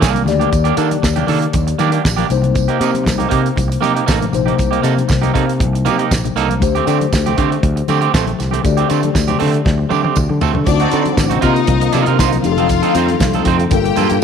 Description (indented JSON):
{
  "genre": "disco",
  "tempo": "118 BPM",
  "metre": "4/4",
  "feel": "straight",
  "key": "unclear",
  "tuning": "A4 = 439 Hz",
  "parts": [
    { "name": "electric guitar at the edge of break-up", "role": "accompaniment", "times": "0.0-14.1 s", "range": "A3 to C5", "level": "-19 LUFS", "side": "right 12 dB", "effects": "none" },
    { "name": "mellow tine electric piano", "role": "accompaniment", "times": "0.0-14.2 s", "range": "C3 to D5", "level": "-19 LUFS", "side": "left 10 dB", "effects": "medium stereo tremolo" },
    { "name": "fingered electric bass", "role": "bass", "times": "0.0-14.2 s", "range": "F1 to Eb3", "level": "-18 LUFS", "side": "equal", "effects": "none" },
    { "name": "damped 70s drum kit", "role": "drums", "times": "0.0-14.2 s", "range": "hi-hat, kick drum, snare drum, toms", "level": "-19 LUFS", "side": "right 1 dB", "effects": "none" },
    { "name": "congas", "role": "percussion", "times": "0.0-14.1 s", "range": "none", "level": "-26 LUFS", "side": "left 9 dB", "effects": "none" },
    { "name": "tambourine", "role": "percussion", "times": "0.0-14.2 s", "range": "none", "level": "-31 LUFS", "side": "right 13 dB", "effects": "none" },
    { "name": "clear studio string section", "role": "second line", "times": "10.7-14.2 s", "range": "D4 to G5", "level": "-20 LUFS", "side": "left 11 dB", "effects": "none" },
    { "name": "mellow tonewheel organ", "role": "sustained chords", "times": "10.7-14.2 s", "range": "Bb2 to F#4", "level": "-22 LUFS", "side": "right 13 dB", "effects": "chorus vibrato, fast rotary speaker" }
  ],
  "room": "light reverb, studio reverb",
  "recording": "1960s-style stereo with parts hard left and right",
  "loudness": "-13 LUFS",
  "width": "side -7 dB against mid",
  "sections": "0.0-10.7 A section; 10.7-14.2 B section",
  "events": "drum fill 9.7-10.7",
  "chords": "0.0 Ebmaj7; 2.3 Cm7; 6.6 D7sus4; 10.7 D7b9; 11.4 Cm11; 12.5 F7; 13.7 Gm9"
}